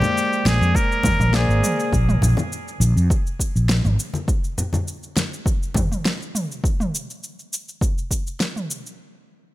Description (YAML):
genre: sunset chillout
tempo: 102 BPM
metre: 4/4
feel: swing 53% on 16ths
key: unclear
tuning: A4 = 439 Hz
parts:
  - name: trumpet with straight mute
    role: melody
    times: 0.0-1.9 s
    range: G4 to Bb4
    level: -24 LUFS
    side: equal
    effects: digital delay
  - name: bell-like tine electric piano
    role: accompaniment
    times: 0.0-1.9 s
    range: Ab3 to D5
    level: -26 LUFS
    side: left 1 dB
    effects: auto-pan, digital delay
  - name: deep house drum kit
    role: drums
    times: 0.0-9.0 s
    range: shaker, snare drum, toms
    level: -25 LUFS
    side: equal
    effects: overdrive, small room ambience
  - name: congas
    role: percussion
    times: 0.0-5.9 s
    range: none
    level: -26 LUFS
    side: left 1 dB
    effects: none
  - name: mellow fretless electric bass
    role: bass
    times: 0.5-4.0 s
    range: Ab1 to F2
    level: -17 LUFS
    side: equal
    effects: none
  - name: electronic kick drum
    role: drums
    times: 0.7-8.2 s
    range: none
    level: -21 LUFS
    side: equal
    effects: overdrive, small room ambience
room: studio reverb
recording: none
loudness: -19 LUFS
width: side -17 dB against mid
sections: 0.0-9.0 A section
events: none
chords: 0.0 Bb9; 4.3 N.C.